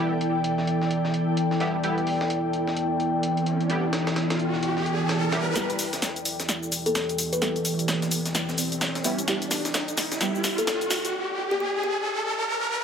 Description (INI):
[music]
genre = bass house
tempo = 129 BPM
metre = 4/4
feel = swing 61% on 16ths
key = E minor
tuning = A4 = 440 Hz
[part]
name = dark analog pad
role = sustained chords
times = 0.0-11.1 s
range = E3 to G4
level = -28 LUFS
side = right 1 dB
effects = chorus, phaser
[part]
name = band-passed chord stab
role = stabs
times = 0.0-11.1 s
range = G3 to G4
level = -31 LUFS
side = right 2 dB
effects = ensemble chorus, vintage 12-bit sampler grit, dub echo
[part]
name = ethereal airy pad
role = texture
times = 0.0-11.1 s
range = E4 to G5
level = -30 LUFS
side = left 2 dB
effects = ensemble chorus, built-in reverb
[part]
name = breakbeat sampler-style drum kit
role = drums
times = 0.2-11.1 s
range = hi-hat, snare drum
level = -33 LUFS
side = equal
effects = high-pass filter on hats, low-pass filter on hats, high-pass filter on snare, low-pass filter on snare
[part]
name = riser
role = sound effects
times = 2.9-12.8 s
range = none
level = -30 LUFS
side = right 1 dB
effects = none
[part]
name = house drum kit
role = drums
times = 5.6-11.1 s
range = hi-hat, shaker, snare drum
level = -27 LUFS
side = left 1 dB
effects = high-pass filter on snare, high-pass filter on hats, high-pass filter on perc
[part]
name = kalimba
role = melody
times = 6.9-12.5 s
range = G4 to B4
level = -29 LUFS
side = left 3 dB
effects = none
[sound]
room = wet plate reverb, RT60 1.6 s, digital ambience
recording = high-pass filter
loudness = -23 LUFS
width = side -7 dB against mid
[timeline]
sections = 0.0-5.6 A section; 5.6-12.8 B section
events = riser 2.9-5.6, 5.6-12.8; build-up 5.6-12.8; drum fill 5.6-11.1; filter sweep on analog synth pad 5.6-12.8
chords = 0.0 Em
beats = 0.44 0.91 1.37 | 1.84 2.30 2.77 3.23 | 3.70 4.16 4.63 5.09 | 5.56 6.02 6.49 6.95 | 7.42 7.88 8.35 8.81 | 9.28 9.74 10.21 10.67 | 11.14 11.60 12.07 12.53